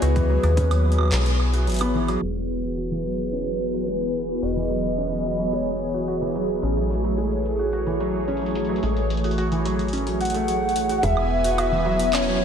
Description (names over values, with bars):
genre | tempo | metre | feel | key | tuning
IDM | 109 BPM | 4/4 | straight | unclear | A4 = 441 Hz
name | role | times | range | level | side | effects
warbly nostalgic lead | melody | 0.0-6.4, 10.2-12.4 s | B4 to F#5 | -26 LUFS | equal | chorus, tremolo, analog delay
phased analog pad | sustained chords | 0.0-12.4 s | E3 to G#5 | -26 LUFS | equal | phaser, chorus
felt-muted upright piano | arpeggios | 0.0-12.4 s | E3 to F#4 | -28 LUFS | equal | low-pass filter, diffuse ambient delay
metallic FM bass | bass | 0.0-12.4 s | E1 to D#2 | -25 LUFS | equal | none
booming analog drum machine | drums | 0.0-12.2 s | handclaps, hi-hat, woodblock | -30 LUFS | right 3 dB | diffuse ambient delay
electronic kick drum | drums | 0.2-0.7, 11.0-11.1 s | none | -27 LUFS | equal | overdrive
room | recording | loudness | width
wet lush hall reverb, RT60 2.9 s | dreamy mix soaked in reverb, low-pass filter | -20 LUFS | side -8 dB against mid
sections
0.0-2.2 A section; 2.2-11.0 B section; 11.0-12.4 C section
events
break 1.1-2.2; filter sweep on felt piano 2.2-11.0; filter sweep 2.2-11.0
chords
0.0 C#m7; 2.2 E; 6.6 Amaj7; 11.0 E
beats
| 0.02 0.57 1.12 1.67 | 2.22 2.77 3.32 3.88 | 4.42 4.98 5.53 6.08 | 6.63 7.18 7.73 8.28 | 8.83 9.38 9.93 10.48 | 11.03 11.58 12.13